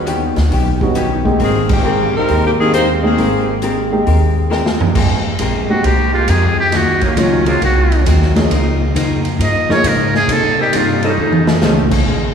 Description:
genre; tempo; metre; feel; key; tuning
jazz, big band swing; 135 BPM; 4/4; swing 67% on 8ths; Ab major; A4 = 440 Hz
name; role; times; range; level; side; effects
warm saxophone section; melody; 0.0-3.6 s; Eb3 to C5; -18 LUFS; left 1 dB; none
warm baby grand piano; accompaniment; 0.0-11.9 s; F3 to Ab4; -20 LUFS; right 1 dB; none
upright bass; bass; 0.0-12.3 s; Ab1 to C3; -17 LUFS; equal; none
archtop guitar, miked and amplified; accompaniment; 0.1-12.3 s; F2 to Bb4; -20 LUFS; left 2 dB; none
swinging big-band drum kit; drums; 0.1-12.0 s; crash cymbal, hi-hat, kick drum, ride cymbal, snare drum, toms; -20 LUFS; right 1 dB; none
trumpet with metal mute; melody; 5.7-11.5 s; Bb3 to Eb5; -17 LUFS; right 1 dB; none
warm saxophone section; sustained chords; 6.1-11.8 s; C3 to Bb4; -24 LUFS; right 1 dB; none
room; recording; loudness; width
wet church reverb, RT60 3.4 s; recorded in a church or concert hall, studio reverb; -12 LUFS; side -7 dB against mid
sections
0.0-5.0 A section; 5.0-12.3 B section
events
band accent 1.6; drum fill 4.5-5.0, 11.2-11.6; muted trumpet solo 5.0-12.3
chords
0.0 Eb7b13; 1.4 Abmaj9; 6.7 Ebm9; 7.6 Ab9; 8.5 Db69; 10.3 Cm7; 11.2 F7alt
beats
0.07 0.52 0.96 | 1.40 1.85 2.29 2.74 | 3.18 3.63 4.07 4.52 | 4.96 5.41 5.85 6.29 | 6.74 7.18 7.63 8.07 | 8.51 8.96 9.40 9.85 | 10.29 10.73 11.18 11.62 | 12.07

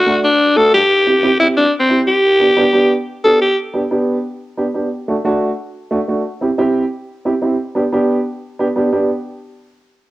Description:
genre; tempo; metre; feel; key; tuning
latin; 179 BPM; 4/4; straight; G major; A4 = 439 Hz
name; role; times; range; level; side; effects
raspy alto saxophone; melody; 0.0-3.6 s; C4 to A4; -11 LUFS; left 1 dB; cassette tape
dark upright piano; accompaniment; 0.1-9.1 s; A3 to G4; -16 LUFS; right 1 dB; none
room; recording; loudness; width
moderate spring reverb, RT60 1.3 s, studio ambience; home recording on cassette; -13 LUFS; side -17 dB against mid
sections
0.0-3.6 A section; 3.6-8.9 B section; 8.9-10.1 C section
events
none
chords
0.0 D; 0.9 C; 2.2 G; 4.9 D; 6.3 C; 7.6 G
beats
0.23 0.57 | 0.90 1.24 1.57 1.90 | 2.24 2.57 2.91 3.24 | 3.58 3.91 4.25 4.58 | 4.91 5.25 5.58 5.92 | 6.25 6.59 6.92 7.25 | 7.59 7.92 8.26 8.59 | 8.93

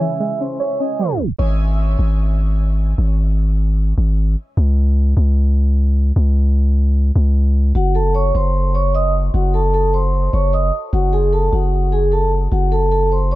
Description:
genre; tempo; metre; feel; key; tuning
hip hop; 151 BPM; 4/4; half-time; unclear; A4 = 440 Hz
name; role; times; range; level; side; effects
vibraphone with soft mallets; melody; 0.0-1.4, 7.8-13.4 s; F#4 to E6; -20 LUFS; right 1 dB; low-pass filter, tape echo
warm studio violin section; second line; 0.0-1.0 s; E5 to G#5; -35 LUFS; right 2 dB; tape echo
string-like resonator pluck; accompaniment; 0.0-1.4 s; C#3 to C#5; -24 LUFS; right 1 dB; chorus, low-pass filter
clear symphonic string section; sustained chords; 0.0-1.4 s; C#3 to G#4; -33 LUFS; equal; none
long sustained 808-style bass; bass; 1.4-13.4 s; F#1 to C#2; -15 LUFS; equal; none
room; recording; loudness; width
studio ambience; low-pass filter, tape stop; -14 LUFS; side -17 dB against mid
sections
0.0-1.4 A section; 1.4-13.4 B section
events
tape stop 1.0-1.4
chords
0.0 C#m; 1.4 N.C.; 7.8 F#m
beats
0.20 0.60 1.00 | 1.39 1.79 2.19 2.59 | 2.98 3.38 3.78 4.17 | 4.57 4.97 5.37 5.76 | 6.16 6.56 6.96 7.35 | 7.75 8.15 8.55 8.94 | 9.34 9.74 10.14 10.53 | 10.93 11.33 11.72 12.12 | 12.52 12.92 13.31

